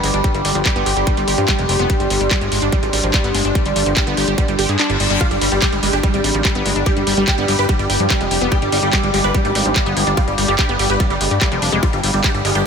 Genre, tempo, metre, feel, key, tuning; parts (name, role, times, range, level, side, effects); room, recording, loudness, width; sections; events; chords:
psychedelic trance; 145 BPM; 4/4; straight; A4 = 440 Hz
overtone-sweeping drone; sustained chords; 0.0-12.7 s; G3 to G4; -22 LUFS; equal; chorus, built-in reverb, sidechain pumping
wide unison pluck; riff; 0.0-12.6 s; F3 to Ab4; -23 LUFS; moving between left 4 dB and right 5 dB; auto-pan, sidechain pumping, analog delay
fat analog bass; bass; 0.0-12.6 s; F1 to G2; -21 LUFS; equal
drum and bass drum kit; drums; 0.0-12.6 s; handclaps, hi-hat; -21 LUFS; equal
ethereal airy pad; texture; 0.0-12.7 s; D4 to C6; -26 LUFS; equal; ensemble chorus, built-in reverb, tremolo, sidechain pumping
electronic kick drum; drums; 0.2-12.3 s; -18 LUFS; equal
reverse cymbal; sound effects; 4.6-5.2 s; -29 LUFS; left 3 dB
dense compressed supersaw; melody; 5.2-12.6 s; G3 to B4; -23 LUFS; right 1 dB; phaser, sidechain pumping, analog delay
moderate huge ambient reverb, RT60 7.5 s; dreamy mix soaked in reverb; -14 LUFS; side -6 dB against mid
0.0-12.7 A section
reverse cymbal 4.6-5.2; kick drops out 4.8-5.2
0.0 G5